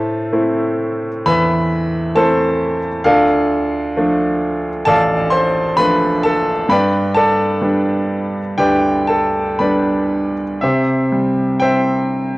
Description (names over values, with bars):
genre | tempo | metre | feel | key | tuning
classical, lyrical solo piano | 57-68 BPM | 4/4 | rubato | C major | A4 = 442 Hz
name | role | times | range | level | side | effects
clear baby grand piano | solo | 0.0-12.4 s | A1 to C6 | -14 LUFS | equal | none
room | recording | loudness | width
moderate scoring stage reverb, RT60 2.0 s | worn, warbling old tape, cassette tape, warbly pitch drift | -14 LUFS | side -20 dB against mid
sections
0.0-10.6 A section; 10.6-12.4 B section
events
none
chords
0.0 Am; 3.1 Dm; 6.7 G; 10.6 C